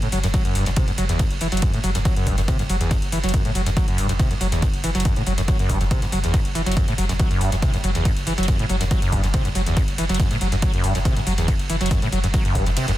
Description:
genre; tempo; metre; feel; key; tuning
driving peak-time techno; 140 BPM; 4/4; straight; F# locrian; A4 = 440 Hz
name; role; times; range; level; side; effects
screaming distorted acid line; riff; 0.0-12.9 s; E2 to F#3; -23 LUFS; equal; distortion, wide subtle chorus, sidechain pumping, dub echo
saturated sub bass; bass; 0.0-13.0 s; F#1; -26 LUFS; equal; tube saturation, sidechain pumping, low-pass filter
techno drum kit; drums; 0.0-13.0 s; hi-hat, ride cymbal; -29 LUFS; equal; sidechain pumping on hats, sidechain pumping on cymbals
electronic kick drum; drums; 0.3-12.6 s; none; -22 LUFS; equal; none
room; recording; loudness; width
digital ambience; dense, heavily limited modern master; -18 LUFS; side -14 dB against mid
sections
0.0-13.0 A section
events
kick drops out 12.8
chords
none

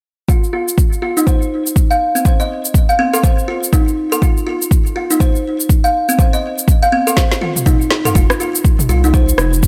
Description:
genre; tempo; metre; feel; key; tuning
afro house; 122 BPM; 4/4; swing 60% on 16ths; unclear; A4 = 440 Hz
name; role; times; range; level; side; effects
kalimba; arpeggios; 0.3-9.3 s; C4 to F5; -19 LUFS; equal; vintage 12-bit sampler grit, sidechain pumping, low-pass filter, digital delay
deep house drum kit; drums; 0.3-9.7 s; rim click, shaker, snare drum, toms; -21 LUFS; equal; none
electronic kick drum; drums; 0.3-9.7 s; none; -15 LUFS; equal; none
round analog bass; bass; 8.2-9.7 s; F1 to C2; -17 LUFS; equal; sidechain pumping
room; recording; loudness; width
little or no reverb; none; -14 LUFS; mono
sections
0.3-8.2 A section; 8.2-9.7 B section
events
drum fill 7.2-8.2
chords
0.3 F7(no3); 8.2 F5

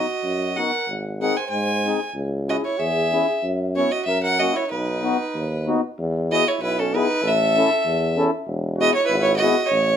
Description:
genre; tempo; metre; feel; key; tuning
alpine folk, alpine dance band; 95 BPM; 2/4; straight; B major, E major from 6.0 s; A4 = 440 Hz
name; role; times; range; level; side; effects
rich fiddle; melody; 0.0-10.0 s; A4 to G#5; -22 LUFS; equal; none
mellow trumpet; second line; 0.0-9.7 s; C#4 to B#4; -28 LUFS; right 5 dB; none
mellow accordion; accompaniment; 0.0-9.6 s; A#3 to A4; -23 LUFS; left 3 dB; none
clear tuba; bass; 0.2-10.0 s; E1 to G#2; -25 LUFS; equal; none
room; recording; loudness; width
moderate studio reverb, RT60 0.6 s; minimal, uncompressed stereo recording; -19 LUFS; side -8 dB against mid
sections
0.0-6.0 A section; 6.0-10.0 B section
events
none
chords
0.0 B; 0.9 G#; 2.2 C#m; 3.4 F#sus4; 4.1 F#; 4.7 B; 6.0 E; 7.2 A; 8.5 E

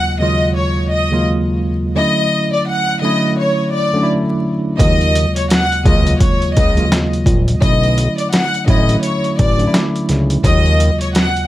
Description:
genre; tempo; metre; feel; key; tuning
hip hop, boom-bap hip-hop; 85 BPM; 4/4; swing 61% on 16ths; Eb minor; A4 = 440 Hz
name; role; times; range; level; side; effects
warm studio violin section; melody; 0.0-11.5 s; Db5 to Gb5; -18 LUFS; left 1 dB; ping-pong delay
mellow tine electric piano; accompaniment; 0.0-11.5 s; Eb2 to F4; -17 LUFS; equal; medium stereo tremolo
fat analog bass; bass; 4.8-10.9 s; A1 to Eb2; -15 LUFS; equal; none
boom bap sampler-style drum kit; drums; 4.8-11.5 s; hi-hat, kick drum, rim click, snare drum; -15 LUFS; equal; overdrive
room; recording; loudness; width
light reverb; vinyl crackle; -12 LUFS; side -14 dB against mid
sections
0.0-11.5 A section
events
none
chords
0.0 Ebm11; 2.0 Dmaj9; 4.8 Ebm11; 7.6 Bm11; 10.4 Ebm11

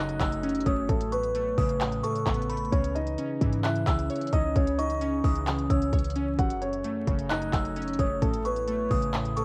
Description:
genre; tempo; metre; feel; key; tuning
hip hop, trap; 131 BPM; 4/4; half-time; C# minor; A4 = 442 Hz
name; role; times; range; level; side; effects
dark grand piano; melody; 0.0-9.4 s; A3 to F#5; -33 LUFS; equal; cassette tape
glassy synth bell; second line; 0.0-9.4 s; B5 to F#6; -38 LUFS; equal; chorus, cassette tape, tape echo
glassy digital keys; accompaniment; 0.0-9.4 s; F#2 to C#5; -34 LUFS; equal; chorus, cassette tape
warbly tape-like pad; sustained chords; 0.1-9.4 s; C#3 to C#5; -42 LUFS; equal; chorus, built-in reverb, cassette tape
clean 808-style bass; bass; 0.0-9.4 s; F#1 to G#2; -34 LUFS; equal; none
trap drum kit; drums; 0.1-9.4 s; handclaps, hi-hat, kick drum; -31 LUFS; equal; vintage 12-bit sampler grit, cassette tape
room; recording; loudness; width
light reverb; home recording on cassette, vinyl crackle; -27 LUFS; mono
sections
0.0-9.4 A section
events
none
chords
0.0 F#m; 0.9 Aadd9; 2.7 C#m; 6.4 F#m; 8.2 Aadd9

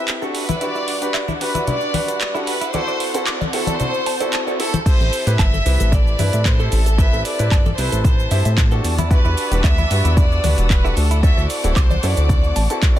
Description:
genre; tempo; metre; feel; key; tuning
nu-disco, nu disco; 113 BPM; 4/4; swing 53% on 16ths; A dorian; A4 = 439 Hz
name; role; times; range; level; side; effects
rich chamber violin section; melody; 0.0-12.8 s; A4 to E5; -24 LUFS; right 1 dB; tape echo
bright concert grand piano; accompaniment; 0.0-13.0 s; C4 to C5; -26 LUFS; right 1 dB; dub echo
dark studio string section; sustained chords; 0.0-13.0 s; G3 to E6; -30 LUFS; left 2 dB; sidechain pumping
house drum kit; drums; 0.1-12.9 s; cabasa, crash cymbal, handclaps, hi-hat; -26 LUFS; right 2 dB; studio reverb
cabasa and congas; percussion; 0.1-13.0 s; none; -26 LUFS; left 3 dB; none
direct-recorded clean electric guitar; riff; 0.2-13.0 s; E4 to D6; -30 LUFS; right 3 dB; wide subtle chorus, low-pass filter, dub echo
chorused synth bass; bass; 4.9-12.7 s; D1 to A2; -18 LUFS; equal; tube saturation
electronic kick drum; drums; 4.9-12.9 s; none; -16 LUFS; equal; studio reverb
room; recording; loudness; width
light reverb; dense, heavily limited modern master; -15 LUFS; side -12 dB against mid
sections
0.0-4.9 A section; 4.9-13.0 B section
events
build-up 0.0-4.9; drop 4.9-13.0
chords
0.3 Em9; 2.7 D7; 4.9 Am7; 8.8 Em9; 11.2 D7

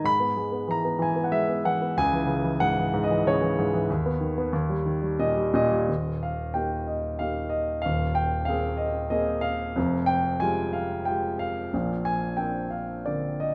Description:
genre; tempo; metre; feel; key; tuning
classical, lyrical solo piano; 92 BPM; 3/4; rubato; Eb major from 5.9 s; A4 = 440 Hz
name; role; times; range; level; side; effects
warm grand piano; solo; 0.0-13.5 s; D#1 to B5; -26 LUFS; equal; none
room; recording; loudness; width
moderate recital hall reverb, RT60 1.5 s; none; -26 LUFS; mono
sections
0.0-5.9 A section; 5.9-13.5 B section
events
none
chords
0.1 E/G#; 2.0 C#m; 3.9 Badd9/D#; 4.5 D#; 7.9 Abadd9/Eb; 9.8 Fmadd9; 11.7 Bbadd9

